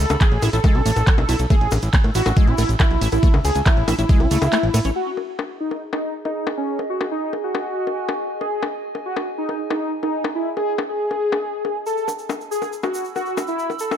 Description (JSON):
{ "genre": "psychedelic trance", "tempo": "139 BPM", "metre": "4/4", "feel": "straight", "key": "G# phrygian", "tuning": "A4 = 442 Hz", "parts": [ { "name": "wide unison lead", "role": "melody", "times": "0.0-13.9 s", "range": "C#4 to A4", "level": "-24 LUFS", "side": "equal", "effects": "phaser, sidechain pumping, digital delay" }, { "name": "fat analog bass", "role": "bass", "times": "0.0-4.9 s", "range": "A1 to A2", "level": "-20 LUFS", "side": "equal", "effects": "tube saturation" }, { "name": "warbly tape-like pad", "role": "texture", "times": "0.0-14.0 s", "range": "G#4 to E6", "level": "-32 LUFS", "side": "right 2 dB", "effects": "chorus, built-in reverb, phaser, sidechain pumping" }, { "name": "drum and bass drum kit", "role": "drums", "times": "0.1-14.0 s", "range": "bongos, handclaps, hi-hat, ride cymbal", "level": "-26 LUFS", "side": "left 4 dB", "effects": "studio reverb" }, { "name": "tube shaker", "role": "percussion", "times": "0.1-4.9, 11.9-14.0 s", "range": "none", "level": "-37 LUFS", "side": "right 3 dB", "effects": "none" }, { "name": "liquid acid bass", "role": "riff", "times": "0.2-4.9 s", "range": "G#3 to E4", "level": "-26 LUFS", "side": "moving between left 3 dB and right 5 dB", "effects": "chorus, auto-pan, sidechain pumping, digital delay" }, { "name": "electronic kick drum", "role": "drums", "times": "0.2-4.2 s", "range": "none", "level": "-15 LUFS", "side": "equal", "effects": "overdrive, studio reverb" } ], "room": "little or no reverb", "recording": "none", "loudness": "-18 LUFS", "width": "side -9 dB against mid", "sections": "0.0-5.0 A section; 5.0-14.0 B section", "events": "drop 0.0-5.0; break 4.5-5.0", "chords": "0.0 A5; 5.0 G#5; 11.9 A5" }